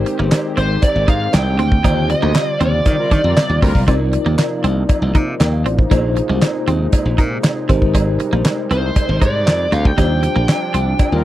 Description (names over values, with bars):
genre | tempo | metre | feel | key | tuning
early-eighties boogie funk | 118 BPM | 4/4 | straight | unclear | A4 = 440 Hz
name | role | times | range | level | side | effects
mellow tine electric piano | accompaniment | 0.0-11.2 s | D3 to G5 | -22 LUFS | left 2 dB | medium stereo tremolo
warm analog pad | sustained chords | 0.0-11.2 s | C3 to G4 | -26 LUFS | left 1 dB | chorus
glassy slap bass | bass | 0.0-11.2 s | G1 to Eb3 | -18 LUFS | equal | none
clean electric guitar | riff | 0.1-10.8 s | Ab3 to Eb4 | -23 LUFS | right 4 dB | analog chorus
damped 70s drum kit | drums | 0.1-11.1 s | handclaps, hi-hat, kick drum, snare drum | -15 LUFS | equal | none
cowbell | percussion | 0.3-11.1 s | none | -28 LUFS | right 2 dB | none
bluesy overdriven lead guitar | melody | 0.6-3.6, 8.7-11.2 s | C5 to G5 | -21 LUFS | right 1 dB | distortion, tape echo
analog synth brass | second line | 3.0-3.8, 11.1-11.2 s | G3 to Bb4 | -22 LUFS | left 2 dB | chorus
room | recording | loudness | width
little or no reverb | dry, close 1970s-style studio recording | -13 LUFS | side -14 dB against mid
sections
0.0-11.2 A section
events
band accent 1.8-3.9, 10.0-11.2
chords
0.0 Abmaj7; 1.8 Ebmaj13; 3.9 Cm11; 5.9 Bb9sus4; 7.7 Abmaj7; 10.0 Ebmaj13